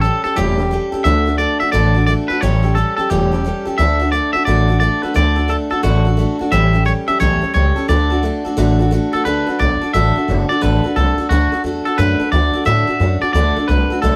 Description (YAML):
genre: rockabilly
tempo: 176 BPM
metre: 4/4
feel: swing 64% on 8ths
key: D major, D mixolydian from 9.3 s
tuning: A4 = 440 Hz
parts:
  - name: twangy electric guitar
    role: melody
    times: 0.0-14.2 s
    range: F#4 to E5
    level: -21 LUFS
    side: equal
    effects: none
  - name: picked steel-string acoustic guitar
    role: accompaniment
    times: 0.0-14.2 s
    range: A2 to A4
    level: -21 LUFS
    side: equal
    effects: none
  - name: upright bass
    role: bass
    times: 0.0-14.2 s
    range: E1 to A2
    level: -19 LUFS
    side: equal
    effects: none
room: moderate studio ambience, RT60 0.5 s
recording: band playing live in one room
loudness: -16 LUFS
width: mono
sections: 0.0-9.3 A section; 9.3-14.2 B section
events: none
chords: 0.0 A7; 1.1 D; 2.4 A7; 3.8 D; 6.5 A7; 7.9 D